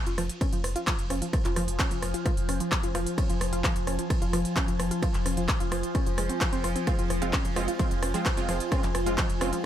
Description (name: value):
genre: driving peak-time techno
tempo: 130 BPM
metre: 4/4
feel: straight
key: F minor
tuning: A4 = 440 Hz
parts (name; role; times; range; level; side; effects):
- overtone-sweeping drone; drone; 0.8-9.7 s; F3; -35 LUFS; left 2 dB; chorus, built-in reverb, sidechain pumping
- granular cloud pad; texture; 0.4-9.7 s; F4 to Ab5; -36 LUFS; left 1 dB; built-in reverb, sidechain pumping
- warbly dusty pluck; riff; 0.1-9.6 s; F3 to F4; -33 LUFS; equal; chorus, sidechain pumping, ping-pong delay
- saturated sub bass; bass; 0.1-9.5 s; F1; -33 LUFS; equal; sidechain pumping, low-pass filter
- techno drum kit; drums; 0.1-9.6 s; handclaps, hi-hat, ride cymbal, rim click; -32 LUFS; equal; sidechain pumping on hats, sidechain pumping on cymbals
- electronic kick drum; drums; 0.4-9.3 s; none; -28 LUFS; equal; none
- supersaw stab; stabs; 6.9-9.5 s; Ab3 to F4; -33 LUFS; right 4 dB; wide subtle chorus, cassette tape, sidechain pumping, ping-pong delay
room: little or no reverb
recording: none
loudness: -25 LUFS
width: side -11 dB against mid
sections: 0.0-9.7 A section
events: none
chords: 0.0 Fm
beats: 0.41 0.87 | 1.33 1.79 2.26 2.72 | 3.18 3.64 4.10 4.56 | 5.03 5.49 5.95 6.41 | 6.87 7.33 7.79 8.26 | 8.72 9.18 9.64